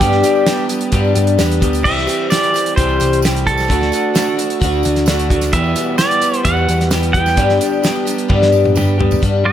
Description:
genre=folk rock and heartland rock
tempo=130 BPM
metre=4/4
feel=straight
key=G major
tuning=A4 = 440 Hz
part: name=pedal steel guitar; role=melody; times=0.0-9.5 s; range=G4 to G5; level=-18 LUFS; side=right 2 dB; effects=none
part: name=picked twelve-string acoustic guitar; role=accompaniment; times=0.0-9.5 s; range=E2 to G4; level=-18 LUFS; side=left 5 dB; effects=none
part: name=electric guitar through a small old amp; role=riff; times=0.0-9.5 s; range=E2 to G4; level=-19 LUFS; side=right 3 dB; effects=wide subtle chorus
part: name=hollow-body short-scale picked electric bass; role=bass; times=0.0-9.5 s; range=C2 to G2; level=-17 LUFS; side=equal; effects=none
part: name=damped 70s drum kit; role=drums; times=0.0-9.3 s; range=crash cymbal, hi-hat, kick drum, snare drum, toms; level=-19 LUFS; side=equal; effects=none
part: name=tambourine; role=percussion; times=0.0-9.2 s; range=none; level=-33 LUFS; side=right 8 dB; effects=none
room=light reverb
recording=none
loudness=-12 LUFS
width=side -10 dB against mid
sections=0.0-9.2 A section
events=drum fill 8.3-9.2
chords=0.0 G; 1.8 C; 3.7 D; 5.5 Em; 7.4 G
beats=| 0.00 0.47 0.93 1.39 | 1.85 2.31 2.77 3.23 | 3.69 4.15 4.61 5.07 | 5.53 5.99 6.45 6.91 | 7.38 7.84 8.30 8.76 | 9.22

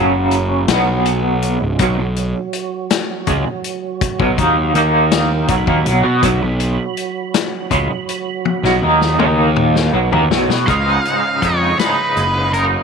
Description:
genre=psychedelic rock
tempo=54 BPM (dotted quarters)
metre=6/8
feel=straight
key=unclear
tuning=A4 = 440 Hz
part: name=percussive tonewheel organ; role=sustained chords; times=0.0-12.8 s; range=Gb3 to Cb6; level=-25 LUFS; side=right 10 dB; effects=chorus vibrato, slow rotary speaker
part: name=twangy electric guitar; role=riff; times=0.0-12.8 s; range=Db2 to Gb4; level=-16 LUFS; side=right 1 dB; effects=tremolo, double-tracked left and right
part: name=fuzz picked electric bass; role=bass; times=0.0-12.8 s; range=Db1 to Cb3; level=-18 LUFS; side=equal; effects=overdrive
part: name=vintage drum kit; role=drums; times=0.3-12.7 s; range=hi-hat, kick drum, snare drum, toms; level=-20 LUFS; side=left 6 dB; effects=none
part: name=octave-fuzz lead guitar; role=melody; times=10.7-12.6 s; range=Bb4 to F5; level=-18 LUFS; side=right 1 dB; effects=wah, distortion, tape echo
room=light reverb, studio ambience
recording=1960s-style stereo with parts hard left and right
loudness=-14 LUFS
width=side -6 dB against mid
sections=0.0-10.7 A section; 10.7-12.8 B section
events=drum fill 8.5-10.7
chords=0.0 Gb5; 0.7 Cb5; 1.6 Db; 1.8 Cb5; 4.8 Eb5; 5.5 Cb5; 9.2 Eb5; 9.9 Cb5; 10.7 Dbadd9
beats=0.68 | 1.79 2.90 | 4.01 5.12 | 6.23 7.34 | 8.45 9.56 | 10.68 11.79

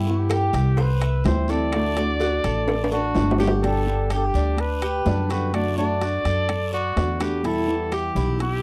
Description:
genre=latin, Cuban son and guajira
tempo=126 BPM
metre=4/4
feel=straight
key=G major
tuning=A4 = 440 Hz
part: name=flamenco guitar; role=accompaniment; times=0.0-8.4 s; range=B2 to G4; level=-30 LUFS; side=equal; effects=none
part: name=Cuban tres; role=arpeggios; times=0.0-8.6 s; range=D4 to E5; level=-31 LUFS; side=equal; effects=none
part: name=upright bass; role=bass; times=0.0-8.6 s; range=G1 to G2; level=-26 LUFS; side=equal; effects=none
part: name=warm trumpet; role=melody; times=0.1-8.6 s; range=F#4 to D5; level=-29 LUFS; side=equal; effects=none
part: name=bongos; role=percussion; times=0.1-3.5 s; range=none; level=-34 LUFS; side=equal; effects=none
part: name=claves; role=percussion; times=0.3-8.2 s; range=none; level=-44 LUFS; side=equal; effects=none
part: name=guiro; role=percussion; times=0.3-8.6 s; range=none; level=-46 LUFS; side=equal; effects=none
part: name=timbales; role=percussion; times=0.3-8.6 s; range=none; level=-30 LUFS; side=equal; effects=none
room=light reverb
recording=dry, close 1970s-style studio recording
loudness=-22 LUFS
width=mono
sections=0.0-3.6 A section; 3.6-8.6 B section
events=drum fill 2.7-3.6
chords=0.0 G6; 0.8 C; 1.7 D; 3.6 G; 5.5 D/F#; 7.4 Em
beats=0.30 0.78 1.26 | 1.73 2.21 2.69 3.16 | 3.64 4.11 4.59 5.07 | 5.54 6.02 6.49 6.97 | 7.44 7.92 8.39

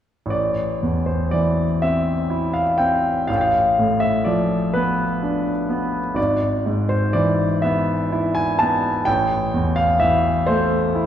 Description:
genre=classical, romantic nocturne for solo piano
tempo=41 BPM (dotted quarters)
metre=12/8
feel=rubato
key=A minor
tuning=A4 = 440 Hz
part: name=bright grand piano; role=solo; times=0.3-11.1 s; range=G#1 to A5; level=-17 LUFS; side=equal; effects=none
room=wet scoring stage reverb, RT60 2.0 s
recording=heard from further back in the room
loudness=-17 LUFS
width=side -10 dB against mid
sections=0.3-11.1 A section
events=none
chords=0.3 Am; 3.3 Bm7b5/A; 6.2 E/G#; 9.1 Am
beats=| 0.32 1.82 3.28 4.75 | 6.17 7.63 9.07 10.48

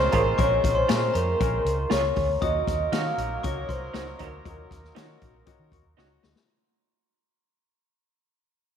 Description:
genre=uptempo 1960s-style soul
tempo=118 BPM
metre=4/4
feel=straight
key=unclear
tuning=A4 = 438 Hz
part: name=vibraphone with soft mallets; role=melody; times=0.0-5.9 s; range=Bb4 to Eb5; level=-26 LUFS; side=equal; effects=none
part: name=clear horn section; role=second line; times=0.0-6.2 s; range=Gb3 to C5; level=-35 LUFS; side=equal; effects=none
part: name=glockenspiel with hard plastic mallets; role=second line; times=0.0-5.9 s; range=Bb5 to F6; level=-34 LUFS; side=right 1 dB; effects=none
part: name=bright upright piano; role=accompaniment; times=0.0-6.5 s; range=Db4 to Db6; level=-34 LUFS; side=left 9 dB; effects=none
part: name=vintage muted fingered electric bass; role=bass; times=0.0-6.3 s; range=A1 to Eb3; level=-30 LUFS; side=equal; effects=none
part: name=electric guitar through a small old amp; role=stabs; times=0.1-6.1 s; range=Eb4 to Db5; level=-34 LUFS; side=right 10 dB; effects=harmonic tremolo, tape echo
part: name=swinging big-band drum kit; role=drums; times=0.1-6.5 s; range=hi-hat, kick drum, snare drum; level=-29 LUFS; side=left 2 dB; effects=none
room=moderate echo chamber reverb, RT60 2.2 s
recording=1960s-style stereo with parts hard left and right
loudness=-22 LUFS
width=side -8 dB against mid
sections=0.0-6.5 A section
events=fade-out 0.0-6.5; upright piano fill 5.5-6.5; drum fill 6.0-6.5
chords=0.0 Bbm7; 2.4 Ebm7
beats=| 0.38 0.89 1.40 1.91 | 2.42 2.92 3.43 3.94 | 4.45 4.96 5.46 5.97

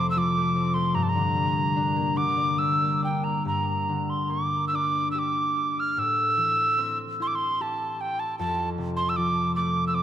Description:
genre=celtic folk, Celtic slow air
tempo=73 BPM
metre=3/4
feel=uneven beats, rubato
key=G dorian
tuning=A4 = 441 Hz
part: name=mellow hollow mid whistle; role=melody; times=0.0-10.0 s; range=G5 to F6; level=-25 LUFS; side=right 1 dB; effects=none
part: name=concert harp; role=accompaniment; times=0.0-10.0 s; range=F2 to D5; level=-27 LUFS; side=left 2 dB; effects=none
room=wet cathedral reverb, RT60 4.2 s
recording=none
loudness=-23 LUFS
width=side -10 dB against mid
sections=0.0-3.5 A section; 3.5-10.0 A section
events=none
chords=0.0 F; 0.9 Gm; 6.0 Am7; 8.4 F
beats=0.17 | 0.95 1.75 2.59 | 3.45 4.30 5.14 | 5.97 6.79 7.60 | 8.39 9.16 9.93

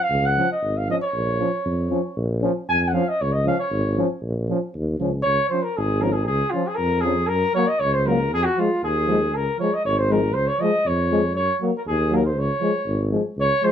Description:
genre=balkan folk, Balkan brass band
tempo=118 BPM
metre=2/4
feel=straight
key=Bb minor, Db major from 5.3 s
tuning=A4 = 440 Hz
part: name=mellow flugelhorn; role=melody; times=0.0-13.7 s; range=F4 to Ab5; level=-22 LUFS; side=equal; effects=plate reverb
part: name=mellow tuba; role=bass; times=0.1-13.5 s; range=Ab1 to Gb2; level=-23 LUFS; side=equal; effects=none
part: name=clear euphonium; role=accompaniment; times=0.4-13.7 s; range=Ab3 to Db4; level=-25 LUFS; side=left 6 dB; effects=none
part: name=warm trombone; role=accompaniment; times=0.4-13.7 s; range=F3 to Gb3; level=-27 LUFS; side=right 5 dB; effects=none
room=moderate studio reverb, RT60 0.5 s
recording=none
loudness=-19 LUFS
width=side -9 dB against mid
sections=0.0-5.3 A section; 5.3-13.4 B section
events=flugelhorn solo 0.0-5.3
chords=0.0 Db; 1.1 Bbm; 3.2 Db; 4.2 Bbm; 5.3 Db; 7.3 Gb; 8.3 Fm; 9.3 Db; 11.4 Gb; 12.4 Db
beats=| 0.11 0.63 | 1.15 1.66 | 2.18 2.69 | 3.21 3.72 | 4.24 4.75 | 5.26 5.77 | 6.28 6.79 | 7.30 7.81 | 8.32 8.83 | 9.34 9.84 | 10.35 10.86 | 11.36 11.87 | 12.37 12.87 | 13.38

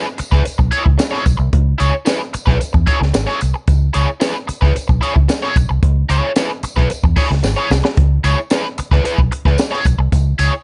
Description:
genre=funk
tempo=112 BPM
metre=4/4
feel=straight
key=C# minor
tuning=A4 = 443 Hz
part: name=crunchy overdriven guitar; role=accompaniment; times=0.0-10.5 s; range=E4 to C#5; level=-22 LUFS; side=equal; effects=wah, tube saturation
part: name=vintage muted fingered electric bass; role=bass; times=0.2-10.5 s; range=G#1 to E2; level=-18 LUFS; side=equal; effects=none
part: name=compact cocktail drum kit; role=drums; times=0.2-10.5 s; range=hi-hat, kick drum, snare drum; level=-19 LUFS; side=equal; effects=none
part: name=tambourine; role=percussion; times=0.2-10.5 s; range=none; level=-36 LUFS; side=equal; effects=none
room=little or no reverb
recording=nothing above 10.4 kHz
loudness=-16 LUFS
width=mono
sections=0.0-10.6 A section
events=drum fill 7.4-8.0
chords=0.0 C#m7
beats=0.46 0.99 | 1.53 2.07 2.60 3.14 | 3.68 4.21 4.75 5.29 | 5.83 6.36 6.90 7.44 | 7.97 8.51 9.05 9.59 | 10.12

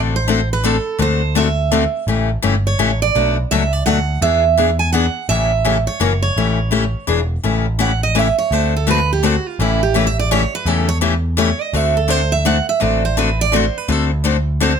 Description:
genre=acoustic string swing (jazz manouche)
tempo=168 BPM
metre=3/4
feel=swing 62% on 8ths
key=A mixolydian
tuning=A4 = 441 Hz
part: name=picked steel-string acoustic guitar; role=accompaniment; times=0.0-14.7 s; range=B2 to A4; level=-18 LUFS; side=left 8 dB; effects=none
part: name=picked electric bass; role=bass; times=0.0-14.7 s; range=E1 to E2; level=-18 LUFS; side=equal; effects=none
part: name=picked steel-string acoustic guitar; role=melody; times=0.2-14.8 s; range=E4 to G#5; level=-19 LUFS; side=right 7 dB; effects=none
room=light reverb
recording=close, detailed microphones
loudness=-14 LUFS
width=side -7 dB against mid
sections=0.0-7.4 A section; 7.4-14.8 B section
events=steel-string acoustic guitar solo 7.4-14.8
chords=0.0 D7; 2.1 A7; 3.1 Bm7; 4.2 E7; 5.3 A7; 6.0 F#7; 6.4 A7; 7.1 E7; 7.4 A7; 8.5 D7; 9.6 A7; 11.7 D7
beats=0.29 0.64 | 1.00 1.36 1.72 | 2.08 2.43 2.79 | 3.15 3.51 3.86 | 4.22 4.58 4.94 | 5.29 5.65 6.01 | 6.37 6.73 7.08 | 7.44 7.80 8.16 | 8.52 8.88 9.23 | 9.59 9.95 10.31 | 10.67 11.02 11.38 | 11.74 12.10 12.46 | 12.81 13.17 13.53 | 13.89 14.25 14.61

